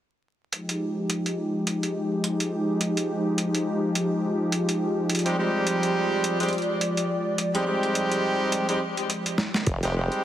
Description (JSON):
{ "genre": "glitch hop", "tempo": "105 BPM", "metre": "4/4", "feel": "swing 57% on 16ths", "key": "F dorian", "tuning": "A4 = 440 Hz", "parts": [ { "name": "warm analog pad", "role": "sustained chords", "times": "0.5-9.6 s", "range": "F3 to D5", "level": "-26 LUFS", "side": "equal", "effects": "wide subtle chorus, sidechain pumping" }, { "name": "boom bap sampler-style drum kit", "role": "drums", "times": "0.5-10.2 s", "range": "hi-hat, snare drum", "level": "-28 LUFS", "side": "right 1 dB", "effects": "overdrive" }, { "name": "clear horn section", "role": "stabs", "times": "5.3-10.2 s", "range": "G3 to G4", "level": "-25 LUFS", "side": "right 1 dB", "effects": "vintage 12-bit sampler grit, sidechain pumping, ping-pong delay" }, { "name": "formant-sweep wobble bass", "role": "bass", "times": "9.7-10.1 s", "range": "F1", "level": "-27 LUFS", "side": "equal", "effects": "chorus, tube saturation" }, { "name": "electronic kick drum", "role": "drums", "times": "9.7-9.8 s", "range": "none", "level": "-27 LUFS", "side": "equal", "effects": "overdrive" } ], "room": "moderate lush hall reverb, RT60 2.7 s", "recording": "heavily compressed radio sound, multiband compression, vinyl crackle", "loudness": "-23 LUFS", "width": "side -11 dB against mid", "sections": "0.5-9.7 A section", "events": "drum fill 9.4", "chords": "0.5 Fm9" }